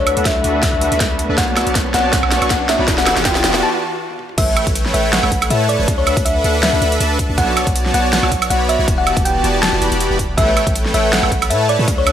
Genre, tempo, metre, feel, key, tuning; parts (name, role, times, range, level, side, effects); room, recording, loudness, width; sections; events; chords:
future bass; 160 BPM; 4/4; swing 54% on 16ths, half-time; A4 = 436 Hz
thumb-piano-like synth pluck; melody; 0.0-12.1 s; C#5 to A5; -20 LUFS; left 1 dB; chorus, sidechain pumping, tape echo
dark chamber string section; sustained chords; 0.0-3.6 s; D3 to A4; -28 LUFS; left 1 dB
soft supersaw; riff; 0.0-12.1 s; E3 to C#6; -19 LUFS; equal; sidechain pumping, low-pass filter
warm 808-style bass; bass; 0.0-12.1 s; E1 to A2; -21 LUFS; equal; sidechain pumping
riser; sound effects; 0.4-3.6 s; -24 LUFS; equal
big-room dance drum kit; drums; 0.1-12.1 s; crash cymbal, hi-hat, snare drum, toms, woodblock; -19 LUFS; right 1 dB; overdrive, high-pass filter on hats, small room ambience, high-pass filter on snare, high-pass filter on perc, high-pass filter on toms, high-pass filter on cymbals
electronic kick drum; drums; 0.3-12.0 s; -20 LUFS; equal; overdrive, small room ambience
moderate digital room reverb, RT60 1.1 s; -13 LUFS; side -10 dB against mid
0.0-4.4 A section; 4.4-12.1 B section
build-up 0.0-4.4; drum fill 0.0-3.6, 4.1; filter sweep on supersaw synth 0.0-4.4; riser 0.4-3.6; break 3.6-4.4; drop 4.4-12.1
0.0 D69; 1.4 Bm9; 2.9 Em11; 4.4 A9; 5.9 D69; 7.4 Bm9; 8.9 Em11; 10.4 A9